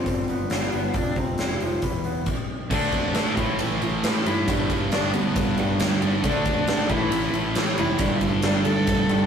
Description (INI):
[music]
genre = quiet-loud alternative rock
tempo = 136 BPM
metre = 4/4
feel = straight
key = unclear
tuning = A4 = 440 Hz
[part]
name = warm cello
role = melody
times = 0.0-9.3 s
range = B3 to A4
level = -28 LUFS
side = left 2 dB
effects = none
[part]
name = electric guitar through a small old amp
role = arpeggios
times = 0.0-9.3 s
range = F2 to D4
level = -30 LUFS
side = left 1 dB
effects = none
[part]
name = fuzz fingered electric bass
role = bass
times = 0.0-9.3 s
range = E1 to A2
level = -31 LUFS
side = equal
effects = overdrive
[part]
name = huge arena drum kit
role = drums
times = 0.1-9.2 s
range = crash cymbal, hi-hat, kick drum, ride cymbal, snare drum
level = -26 LUFS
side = equal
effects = none
[part]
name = thick fuzz guitar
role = riff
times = 2.7-9.3 s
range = G2 to D4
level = -24 LUFS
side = right 2 dB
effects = distortion
[sound]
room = moderate studio reverb, RT60 0.5 s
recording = rough rehearsal-room recording, warm saturation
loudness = -21 LUFS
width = side -7 dB against mid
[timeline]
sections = 0.0-2.7 A section; 2.7-9.3 B section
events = none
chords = 0.0 G7; 0.9 F; 1.8 E5; 2.7 Dm; 3.4 A5; 4.5 Gadd9; 6.2 Dm; 6.9 A5; 8.0 Gsus2